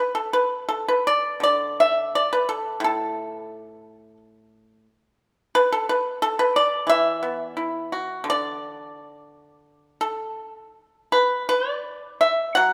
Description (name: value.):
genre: chinese traditional, Chinese solo plucked strings.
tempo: 79-92 BPM.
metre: 4/4.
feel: rubato.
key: D gong mode.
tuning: A4 = 440 Hz.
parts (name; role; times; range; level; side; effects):
pipa; solo; 0.0-12.7 s; A2 to F#5; -23 LUFS; equal; none.
room: moderate concert hall reverb, RT60 2.0 s.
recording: none.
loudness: -23 LUFS.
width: mono.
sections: 0.0-11.2 A section; 11.2-12.7 B section.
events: none.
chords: none.